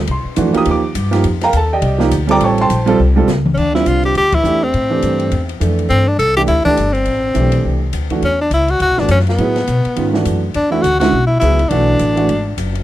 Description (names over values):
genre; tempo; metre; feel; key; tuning
modal jazz; 207 BPM; 4/4; swing 60% on 8ths; unclear; A4 = 440 Hz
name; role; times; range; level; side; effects
upright bass; bass; 0.0-12.8 s; F#1 to B2; -17 LUFS; left 1 dB; none
warm concert grand piano; accompaniment; 0.1-12.3 s; D3 to Eb6; -16 LUFS; right 4 dB; none
open jazz drum kit; drums; 0.1-12.8 s; crash cymbal, hi-hat, kick drum, ride cymbal, snare drum, toms; -25 LUFS; left 2 dB; none
clear tenor saxophone; melody; 3.5-12.6 s; B3 to A4; -16 LUFS; left 1 dB; tape echo
room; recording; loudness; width
little or no reverb; dry, close 1970s-style studio recording; -12 LUFS; side -14 dB against mid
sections
0.0-3.6 A section; 3.6-12.8 B section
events
drum fill 3.0-3.6; band accent 4.3, 11.0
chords
0.0 F13sus4; 2.4 A7alt; 3.6 D9sus4; 8.2 E9sus4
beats
| 0.08 0.37 0.66 0.95 | 1.24 1.53 1.82 2.12 | 2.41 2.70 2.99 3.28 | 3.57 3.86 4.15 4.44 | 4.74 5.03 5.32 5.61 | 5.90 6.19 6.48 6.77 | 7.07 7.36 7.65 7.94 | 8.23 8.52 8.81 9.10 | 9.39 9.68 9.97 10.26 | 10.55 10.84 11.13 11.42 | 11.71 12.00 12.29 12.58